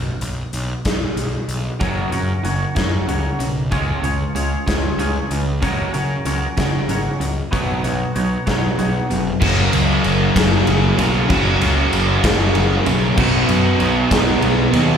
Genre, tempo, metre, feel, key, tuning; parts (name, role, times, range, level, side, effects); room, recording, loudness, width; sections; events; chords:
quiet-loud alternative rock; 63 BPM (dotted quarters); 6/8; straight; F# major; A4 = 444 Hz
fuzz picked electric bass; bass; 0.0-15.0 s; E#1 to C#3; -21 LUFS; equal; overdrive
big rock drum kit; drums; 0.2-14.9 s; crash cymbal, hi-hat, kick drum, ride cymbal, snare drum; -21 LUFS; left 1 dB
twangy electric guitar; arpeggios; 1.8-9.2 s; B3 to C#5; -26 LUFS; left 1 dB; analog chorus, slapback echo
distorted electric guitar; riff; 1.8-15.0 s; F#2 to C#4; -25 LUFS; left 8 dB; distortion
raw garage guitar; riff; 1.8-15.0 s; F#2 to C#4; -23 LUFS; right 11 dB; overdrive, slapback echo
distorted electric guitar; riff; 9.4-15.0 s; F#2 to F#4; -21 LUFS; left 1 dB; overdrive, slapback echo
little or no reverb; live gig heard through the venue's PA, club reverb; -16 LUFS; side -7 dB against mid
0.0-9.4 A section; 9.4-15.0 B section
0.0 N.C.; 1.8 F#; 3.7 C#; 5.6 F#/C#; 7.5 Badd9; 9.4 F#; 13.2 B